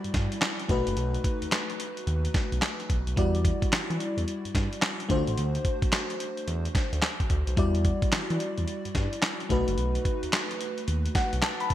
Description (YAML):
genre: R&B, new jack swing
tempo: 109 BPM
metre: 4/4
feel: swing 64% on 16ths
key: E minor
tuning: A4 = 441 Hz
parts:
  - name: FM electric piano with soft pad layer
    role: accompaniment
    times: 0.0-11.7 s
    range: G3 to B5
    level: -31 LUFS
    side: left 1 dB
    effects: chorus, shimmer reverb
  - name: smooth gliding synth bass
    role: bass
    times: 0.0-11.7 s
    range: F#1 to E3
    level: -29 LUFS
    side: equal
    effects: none
  - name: dusty soul sampler-style drum kit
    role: drums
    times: 0.0-11.7 s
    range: handclaps, hi-hat, kick drum, snare drum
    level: -28 LUFS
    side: equal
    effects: gated reverb
room: moderate plate reverb, RT60 2.2 s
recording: bright 1980s-style digital production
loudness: -25 LUFS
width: side -13 dB against mid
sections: 0.0-11.7 A section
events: FM electric piano fill 10.9-11.7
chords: 0.0 Em9; 0.7 B7; 3.2 Em9; 5.1 D7; 7.6 Em9; 9.5 B7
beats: 0.42 | 0.97 1.52 2.07 2.62 | 3.17 3.72 4.27 4.82 | 5.37 5.92 6.47 7.03 | 7.58 8.13 8.68 9.23 | 9.78 10.33 10.88 11.43